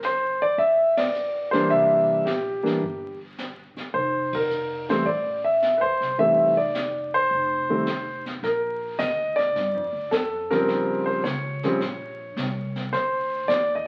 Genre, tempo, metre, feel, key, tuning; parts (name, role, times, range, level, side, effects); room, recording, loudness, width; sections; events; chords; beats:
jazz piano trio; 107 BPM; 4/4; swing 69% on 8ths; F major; A4 = 440 Hz
warm grand piano; melody; 0.0-13.9 s; Db3 to E5; -24 LUFS; equal
upright bass; bass; 0.0-13.9 s; F1 to G2; -39 LUFS; equal
jazz brush drum kit; drums; 0.0-13.9 s; brushed snare drum, hi-hat, kick drum, ride cymbal, snare drum; -38 LUFS; equal
wet studio reverb, RT60 0.9 s; very old 78 rpm record, vinyl crackle; -24 LUFS; mono
0.0-8.4 A section; 8.4-13.9 B section
band accent 0.9, 4.2
0.0 Gm; 1.7 C7; 3.9 Fmaj7; 7.3 F5; 8.4 Bb; 10.7 Eb13; 12.9 D7(no3)
0.02 0.58 1.14 | 1.70 2.26 2.82 3.38 | 3.94 4.50 5.07 5.63 | 6.19 6.75 7.31 7.87 | 8.43 8.99 9.55 10.12 | 10.68 11.24 11.80 12.36 | 12.92 13.49